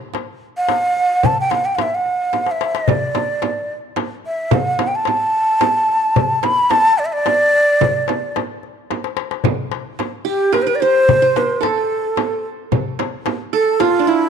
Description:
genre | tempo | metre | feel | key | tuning
Arabic maqam ensemble | 110 BPM | 3/4 | straight | D maqam rast, A maqam bayati from 9.4 s | A4 = 440 Hz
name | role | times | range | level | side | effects
darbuka | percussion | 0.1-13.9 s | none | -22 LUFS | left 11 dB | none
frame drum | percussion | 0.1-13.9 s | none | -23 LUFS | right 9 dB | none
breathy bright ney | melody | 0.6-14.3 s | E4 to B5 | -16 LUFS | equal | none
qanun | second line | 10.2-14.3 s | D4 to C5 | -20 LUFS | right 10 dB | tape echo
room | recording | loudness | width
moderate echo chamber reverb, RT60 1.8 s, small room ambience | 1960s-style stereo with parts hard left and right | -15 LUFS | side -7 dB against mid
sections
0.0-9.4 A section; 9.4-14.3 B section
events
drum fill 2.3-2.9, 8.9-9.4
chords
none

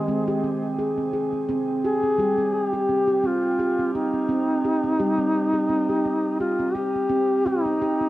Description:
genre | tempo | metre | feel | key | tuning
world meditative, meditative tuned percussion | 85 BPM | 4/4 | swing 55% on 16ths | C minor | A4 = 443 Hz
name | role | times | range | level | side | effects
mellow duduk | melody | 0.0-8.1 s | Ab3 to Ab4 | -23 LUFS | left 1 dB | cassette tape, shimmer reverb, analog delay
handpan | arpeggios | 0.0-8.1 s | G3 to Ab4 | -24 LUFS | right 1 dB | cassette tape, shimmer reverb, analog delay
room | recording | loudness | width
moderate small room reverb, RT60 0.5 s | home recording on cassette | -20 LUFS | side -16 dB against mid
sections
0.0-7.1 A section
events
none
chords
0.0 Ab; 1.5 C5; 7.1 Cm

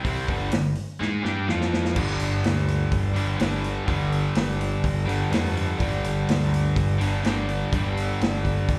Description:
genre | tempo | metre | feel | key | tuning
blues rock power trio and southern rock | 125 BPM | 4/4 | straight | unclear | A4 = 437 Hz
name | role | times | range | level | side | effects
cranked stack guitar | riff | 0.0-8.8 s | G2 to Ab4 | -28 LUFS | equal | overdrive, slapback echo
growling picked electric bass | bass | 0.0-8.8 s | G1 to Ab2 | -29 LUFS | equal | overdrive
vintage drum kit | drums | 0.0-8.8 s | crash cymbal, hi-hat, kick drum, snare drum | -30 LUFS | equal | none
room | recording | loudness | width
small room reverb | live gig heard through the venue's PA, club reverb | -24 LUFS | mono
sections
0.0-2.0 A section; 2.0-8.8 B section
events
drum fill 1.0-2.0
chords
0.0 G5; 1.0 Ebadd11; 1.5 F5; 2.0 G5

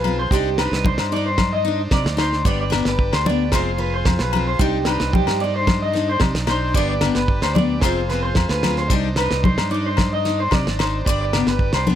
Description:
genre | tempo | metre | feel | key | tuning
highlife guitar band | 112 BPM | 4/4 | straight | C harmonic minor | A4 = 441 Hz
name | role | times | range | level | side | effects
picked steel-string acoustic guitar | accompaniment | 0.0-12.0 s | G3 to F4 | -24 LUFS | left 5 dB | none
combo organ | sustained chords | 0.0-12.0 s | D4 to C5 | -30 LUFS | right 2 dB | none
electric guitar through a small old amp | arpeggios | 0.0-11.9 s | G4 to Eb5 | -23 LUFS | right 1 dB | lush chorus, slapback echo
fingered electric bass | bass | 0.0-12.0 s | F1 to C3 | -24 LUFS | right 1 dB | none
agogo bells | percussion | 0.0-11.9 s | none | -30 LUFS | left 11 dB | none
congas | percussion | 0.1-12.0 s | none | -24 LUFS | left 3 dB | none
damped 70s drum kit | drums | 0.3-11.8 s | kick drum, snare drum | -21 LUFS | right 1 dB | none
room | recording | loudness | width
little or no reverb | none | -17 LUFS | side -10 dB against mid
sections
0.0-12.0 A section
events
none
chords
0.3 Cmadd9; 2.5 G; 3.5 Fm; 4.6 Cmadd9; 6.8 G; 7.8 Fm; 8.9 Cmadd9; 11.1 G

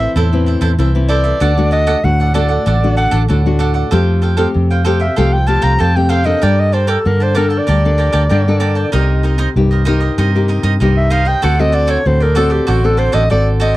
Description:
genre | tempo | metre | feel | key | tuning
samba | 96 BPM | 4/4 | straight | unclear | A4 = 440 Hz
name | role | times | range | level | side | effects
clear clarinet | melody | 0.0-13.8 s | F#4 to Bb5 | -17 LUFS | equal | none
cavaquinho | accompaniment | 0.0-13.8 s | D4 to A5 | -21 LUFS | right 5 dB | none
nylon-string guitar | accompaniment | 0.0-13.8 s | G2 to A4 | -18 LUFS | left 3 dB | none
vintage muted fingered electric bass | bass | 0.0-13.8 s | Ab1 to G2 | -14 LUFS | equal | none
room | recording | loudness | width
little or no reverb | dry, close 1970s-style studio recording | -11 LUFS | side -16 dB against mid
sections
0.0-13.8 A section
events
clarinet solo 0.0-13.8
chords
0.0 Am; 1.4 D; 3.9 Fadd9; 6.4 Gmadd9; 8.9 Cm7; 11.4 D7

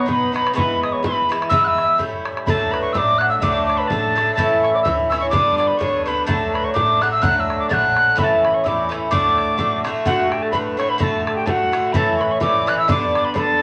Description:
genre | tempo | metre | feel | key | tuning
celtic folk, Celtic polka | 127 BPM | 2/4 | swing 55% on 8ths | D major | A4 = 440 Hz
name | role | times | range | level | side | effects
wooden whistle | melody | 0.0-13.6 s | F#5 to A6 | -22 LUFS | equal | none
breathy baroque flute | second line | 0.0-13.6 s | F#4 to F#5 | -28 LUFS | equal | none
Irish bouzouki | accompaniment | 0.0-13.6 s | G2 to F#4 | -23 LUFS | equal | none
bodhran | percussion | 0.1-13.5 s | none | -28 LUFS | equal | none
upright bass | bass | 2.5-10.0 s | G1 to E2 | -34 LUFS | equal | none
room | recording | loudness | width
wet club reverb, RT60 0.8 s | nothing above 11.0 kHz | -18 LUFS | mono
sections
0.0-2.5 A section; 2.5-10.1 B section; 10.1-13.6 B section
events
none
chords
0.0 B; 0.6 E; 2.0 A7; 2.5 D; 4.4 A; 5.3 G; 6.3 D; 8.2 A; 9.1 D; 11.9 A; 12.9 G

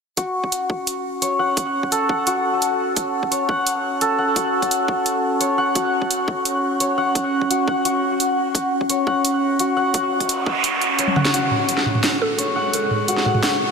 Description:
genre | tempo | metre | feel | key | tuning
half-time drum and bass | 172 BPM | 4/4 | half-time | F# minor | A4 = 440 Hz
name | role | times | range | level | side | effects
santur | arpeggios | 0.2-13.7 s | F#4 to F#5 | -20 LUFS | left 1 dB | low-pass filter, tape echo
drum and bass drum kit | drums | 0.2-13.5 s | hi-hat, snare drum, toms | -21 LUFS | right 1 dB | overdrive
electronic kick drum | drums | 0.2-11.2 s | none | -26 LUFS | right 1 dB | overdrive, high-pass filter on kick
metallic inharmonic drone | texture | 0.6-13.7 s | G#3 to G#4 | -26 LUFS | right 1 dB | chorus, built-in reverb
noise sweep | sound effects | 10.2-11.3 s | none | -26 LUFS | right 4 dB | none
deep dark ambient pad | sustained chords | 12.8-13.7 s | C#4 to F#4 | -44 LUFS | right 4 dB | none
mallet-like synth pluck | melody | 12.2-12.5 s | A4 | -26 LUFS | right 1 dB | chorus, analog delay
room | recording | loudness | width
wet huge ambient reverb, RT60 6.0 s | dreamy mix soaked in reverb | -18 LUFS | side -5 dB against mid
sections
0.2-11.3 A section; 11.3-13.7 B section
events
noise sweep 10.2-11.3; drum fill 11.1; build-up 11.3-13.7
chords
0.2 F#5

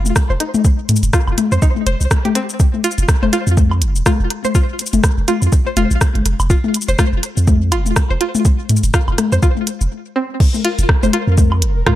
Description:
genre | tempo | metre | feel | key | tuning
minimal techno | 123 BPM | 4/4 | swing 58% on 16ths | unclear | A4 = 440 Hz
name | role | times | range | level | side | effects
punchy sub bass | bass | 0.0-11.8 s | Eb1 to F2 | -16 LUFS | equal | sidechain pumping
minimal click drum kit | drums | 0.1-12.0 s | crash cymbal, hi-hat, rim click, shaker | -22 LUFS | equal | tape echo
electronic toms and woodblock | percussion | 0.1-12.0 s | none | -20 LUFS | left 4 dB | analog delay
electronic kick drum | drums | 0.2-12.0 s | none | -14 LUFS | equal | none
string-like resonator pluck | riff | 0.3-11.9 s | C4 to C5 | -22 LUFS | right 1 dB | chorus, vintage 12-bit sampler grit, sidechain pumping, tape echo
bubbling stepped-filter texture | texture | 10.6-12.0 s | Bb4 | -30 LUFS | left 3 dB | chorus, built-in reverb, sidechain pumping
room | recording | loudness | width
digital ambience | echo-heavy mix | -13 LUFS | side -14 dB against mid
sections
0.0-10.4 A section; 10.4-12.0 B section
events
break 9.9-10.4; drop 10.4-12.0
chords
0.0 N.C.; 10.4 Fsus4

